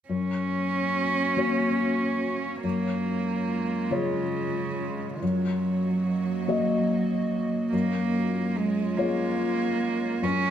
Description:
neoclassical piano and strings; 48 BPM (dotted quarters); 6/8; rubato; F# major; A4 = 440 Hz
warm cello; second line; 0.1-10.5 s; C#3 to C#4; -28 LUFS; right 4 dB
felt-muted upright piano; accompaniment; 0.1-10.5 s; F#2 to D#5; -27 LUFS; left 4 dB
warbly tape-like pad; sustained chords; 0.9-10.5 s; G#3 to D#5; -33 LUFS; equal; chorus, built-in reverb, phaser
moderate recital hall reverb, RT60 1.4 s; -24 LUFS; side -10 dB against mid
0.1-10.5 A section
0.1 F#; 2.6 C#6/F#; 5.2 D#m/F#; 7.7 C#6/F#

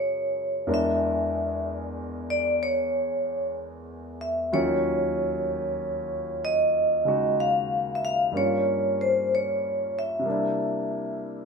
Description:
jazz ballad; 62 BPM; 4/4; swing 67% on 8ths; A4 = 441 Hz
vibraphone with medium hard mallets; melody; 0.0-11.2 s; C5 to F5; -25 LUFS; equal
clear concert grand piano; accompaniment; 0.0-11.4 s; Eb2 to Bb4; -30 LUFS; left 1 dB
wet studio reverb, RT60 0.8 s; band playing live in one room; -23 LUFS; side -5 dB against mid
0.0-11.4 A section
0.0 Gbmaj9; 0.7 E7#11; 4.5 Ebm9; 8.3 Gm7b5; 10.3 C7

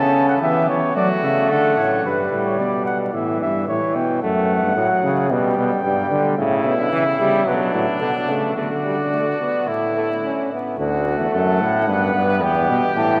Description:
classical, imitative canzona for brass ensemble; 110 BPM; 4/4; straight; G major, D major from 6.4 s; A4 = 440 Hz
mellow cornet; melody; 0.0-13.2 s; A4 to A5; -25 LUFS; equal
clear trumpet; second line; 0.0-2.0, 6.4-13.2 s; D4 to C#5; -28 LUFS; equal
brilliant trombone; accompaniment; 0.0-13.2 s; C#3 to C#4; -24 LUFS; equal
bright bass trombone; bass; 0.0-13.2 s; D2 to F#3; -24 LUFS; equal
wet cathedral reverb, RT60 5.4 s; vinyl crackle; -19 LUFS; mono
0.0-2.1 A section; 2.1-10.8 B section; 10.8-13.2 C section
0.0 A/C#; 1.0 D; 2.1 Gadd9; 3.1 A; 4.2 F#m; 5.3 G/B; 6.4 A; 7.5 Bm; 8.6 Asus4/D; 9.7 A; 10.8 D; 11.9 Em/G

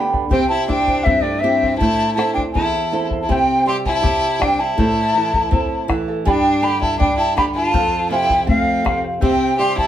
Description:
andean folk, Andean ensemble; 81 BPM; 2/4; straight; A4 = 443 Hz
charango; accompaniment; 0.0-9.9 s; E4 to B5; -25 LUFS; right 2 dB
flamenco guitar; accompaniment; 0.0-9.9 s; E2 to A4; -22 LUFS; right 2 dB
bombo; percussion; 0.1-9.9 s; -22 LUFS; left 2 dB
large quena; melody; 0.3-9.9 s; D5 to C6; -19 LUFS; right 1 dB
bright violin; second line; 0.3-9.9 s; A3 to G4; -22 LUFS; left 4 dB
wet studio reverb, RT60 0.5 s; heard from further back in the room; -15 LUFS; side -11 dB against mid
0.0-3.3 A section; 3.3-9.9 B section
0.3 C; 1.8 Am; 3.3 C; 4.8 Am; 6.3 G; 7.7 F; 9.2 C

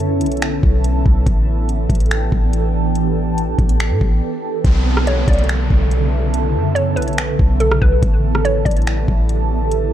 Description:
hip hop, atmospheric cloud-rap; 142 BPM; 4/4; half-time; B minor; A4 = 441 Hz
shimmering ambient pad; sustained chords; 0.0-9.9 s; C#3 to A4; -21 LUFS; right 2 dB; chorus, built-in reverb, phaser, sidechain pumping
soft 808-style bass; bass; 0.0-9.9 s; A1 to A2; -17 LUFS; equal
smooth R&B drum kit; drums; 0.0-9.8 s; finger snaps, hi-hat, kick drum, rim click; -17 LUFS; equal; vintage 12-bit sampler grit
downlifter; sound effects; 4.6-8.0 s; -27 LUFS; right 2 dB
hollow square pluck; melody; 5.1-9.3 s; A4 to D5; -24 LUFS; equal; chorus, low-pass filter, tape echo
little or no reverb; dark, warm production; -14 LUFS; side -11 dB against mid
0.0-4.6 A section; 4.6-9.9 B section
break 4.2-4.6
0.0 Bm11; 1.3 A9sus4; 4.6 Bm11; 8.0 A9sus4

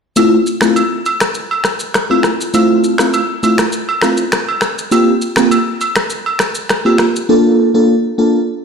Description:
afrobeats; 101 BPM; 4/4; straight; F major; A4 = 440 Hz
crystalline FM electric piano; accompaniment; 0.2-8.4 s; A3 to A4; -12 LUFS; equal; chorus, phaser
electronic shaker, finger snaps and rim click; drums; 0.2-7.3 s; -17 LUFS; left 1 dB
agogo bells; percussion; 0.2-7.0 s; -20 LUFS; right 2 dB
moderate plate reverb, RT60 2.9 s; played on a big sound system in a bare room, stone room reverb; -11 LUFS; side -6 dB against mid
0.2-8.6 A section
0.2 Fmaj7; 4.9 C7sus4; 7.3 Bbmaj7

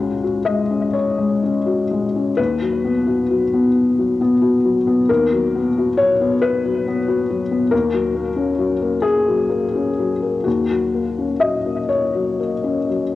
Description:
neoclassical minimalist piano; 45 BPM (dotted quarters); 6/8; uneven beats, rubato; A4 = 441 Hz
felt-muted upright piano; solo; 0.0-13.2 s; C#2 to D#5; -16 LUFS; left 3 dB; cassette tape, tape echo
moderate spring reverb, RT60 2.0 s; home recording on cassette; -16 LUFS; side -15 dB against mid
0.0-13.2 A section
0.0 F#sus2/C#; 2.4 B/D#; 7.7 D#m7

